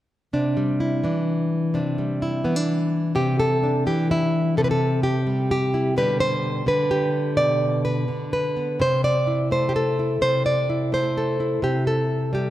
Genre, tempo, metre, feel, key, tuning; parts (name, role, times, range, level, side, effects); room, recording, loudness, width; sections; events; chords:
folk, solo fingerstyle acoustic guitar; 128 BPM; 3/4; straight; C major; A4 = 440 Hz
nylon-string guitar; solo; 0.3-12.5 s; B2 to D5; -20 LUFS; equal
moderate concert hall reverb, RT60 2.1 s; -20 LUFS; side -13 dB against mid
0.3-3.1 A section; 3.1-12.5 B section
0.3 Cadd9; 6.0 G/B; 8.8 Am/C; 11.6 C